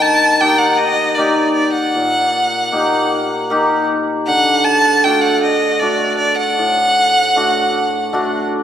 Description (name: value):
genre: klezmer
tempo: 78 BPM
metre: 3/4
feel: straight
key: unclear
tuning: A4 = 437 Hz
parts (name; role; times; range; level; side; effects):
- rich violin; melody; 0.0-8.5 s; D5 to A5; -14 LUFS; equal; none
- hammered dulcimer; accompaniment; 0.0-8.6 s; A2 to G4; -17 LUFS; left 1 dB; none
room: wet church reverb, RT60 2.5 s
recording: recorded in a church or concert hall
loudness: -12 LUFS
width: side -10 dB against mid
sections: 0.0-8.6 A section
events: none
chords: 0.0 Eb; 4.3 D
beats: 0.41 1.19 | 1.96 2.74 3.51 | 4.28 5.05 5.83 | 6.60 7.37 8.14